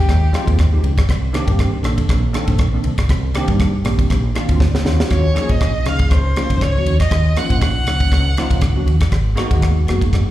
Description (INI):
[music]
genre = electric jazz fusion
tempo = 120 BPM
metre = 4/4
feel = swing 55% on 16ths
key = unclear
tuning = A4 = 441 Hz
[part]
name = clear violin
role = melody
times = 0.0-0.8, 5.1-8.8 s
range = G4 to Gb5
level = -23 LUFS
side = equal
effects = slapback echo, tape echo
[part]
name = bell-like tine electric piano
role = accompaniment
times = 0.0-10.2 s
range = Eb3 to Gb5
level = -23 LUFS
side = right 1 dB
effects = ensemble chorus, slapback echo
[part]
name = woody fretless electric bass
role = bass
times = 0.0-10.3 s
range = Gb1 to G2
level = -17 LUFS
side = equal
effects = none
[part]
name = tight funk drum kit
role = drums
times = 0.1-10.3 s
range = kick drum, ride cymbal, rim click, snare drum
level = -18 LUFS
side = equal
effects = none
[sound]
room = small room reverb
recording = live gig heard through the venue's PA, club reverb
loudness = -14 LUFS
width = side -14 dB against mid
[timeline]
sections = 0.0-10.3 A section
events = tine electric piano fill 4.4-5.1; drum fill 4.6-5.1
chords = 0.0 Fm9; 1.1 Cm9; 4.9 Ebm9; 9.1 Abm9